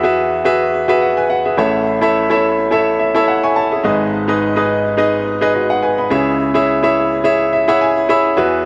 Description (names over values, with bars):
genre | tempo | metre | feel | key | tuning
pop | 106 BPM | 4/4 | swing 55% on 16ths | unclear | A4 = 440 Hz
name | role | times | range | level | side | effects
clear baby grand piano | solo | 0.0-8.7 s | G#1 to C#6 | -15 LUFS | equal | digital delay
room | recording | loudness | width
moderate lush hall reverb, RT60 2.7 s | none | -15 LUFS | mono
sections
0.0-8.7 A section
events
grand piano fill 2.7-3.8, 7.2-8.4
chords
0.0 Eadd9; 1.6 A; 3.8 G#m; 6.1 C#m